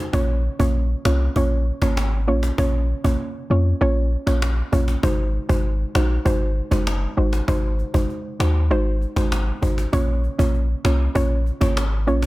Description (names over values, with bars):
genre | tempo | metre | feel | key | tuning
dancehall | 98 BPM | 4/4 | straight | Bb minor | A4 = 440 Hz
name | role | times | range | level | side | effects
soft round pluck | accompaniment | 0.0-12.3 s | Ab3 to Db5 | -24 LUFS | right 2 dB | chorus
clean 808-style bass | bass | 0.1-12.3 s | Gb1 to F2 | -20 LUFS | equal | none
cajon | drums | 0.1-12.3 s | none | -28 LUFS | left 1 dB | none
room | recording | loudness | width
little or no reverb | dense, heavily limited modern master | -18 LUFS | side -19 dB against mid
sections
0.0-9.9 A section; 9.9-12.3 B section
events
none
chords
0.1 Bbm; 5.0 Ab7; 9.9 Bbm